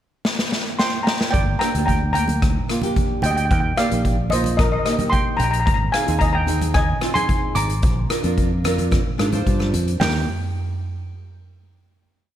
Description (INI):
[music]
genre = calypso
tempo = 111 BPM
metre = 4/4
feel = straight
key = Eb major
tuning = A4 = 440 Hz
[part]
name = street-band drum kit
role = drums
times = 0.2-10.1 s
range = hi-hat, kick drum, rim click, snare drum, toms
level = -22 LUFS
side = equal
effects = none
[part]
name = steel pan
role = melody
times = 0.8-10.3 s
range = Bb4 to D6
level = -22 LUFS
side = equal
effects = none
[part]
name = fingered electric bass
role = bass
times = 1.3-10.3 s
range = G1 to Ab2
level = -22 LUFS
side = equal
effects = none
[part]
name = nylon-string guitar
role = accompaniment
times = 1.6-10.3 s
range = Bb3 to D5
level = -26 LUFS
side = right 1 dB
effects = double-tracked left and right
[part]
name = congas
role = percussion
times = 2.1-10.3 s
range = none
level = -30 LUFS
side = right 3 dB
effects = none
[sound]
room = light reverb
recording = none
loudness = -18 LUFS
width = side -11 dB against mid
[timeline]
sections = 0.0-1.3 pickup bar; 1.3-10.0 chorus; 10.0-12.2 final chord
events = drum fill 0.2-1.3; nylon-string guitar fill 9.2-10.0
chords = 0.0 N.C.; 1.3 Gm; 3.5 Eb; 5.7 Ab; 7.8 Bb; 10.0 Eb